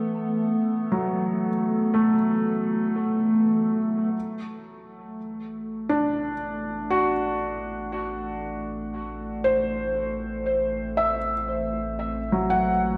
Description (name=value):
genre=ambient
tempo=free time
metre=none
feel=none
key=A dorian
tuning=A4 = 441 Hz
part: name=warbly tape-like pad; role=sustained chords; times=0.0-13.0 s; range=E3 to A4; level=-29 LUFS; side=equal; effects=chorus, built-in reverb, phaser
part: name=felt-muted upright piano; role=arpeggios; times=0.0-13.0 s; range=F#3 to A5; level=-28 LUFS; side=equal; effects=tape echo
part: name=warm sub bass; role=bass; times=4.1-13.0 s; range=A1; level=-42 LUFS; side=equal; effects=none
room=wet concert hall reverb, RT60 2.5 s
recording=dark, warm production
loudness=-25 LUFS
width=mono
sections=0.0-4.1 A section; 4.1-13.0 B section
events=fade-in on ambient pad 4.1-13.0; fade-in on sub bass 4.1-13.0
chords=0.0 A5; 4.1 Am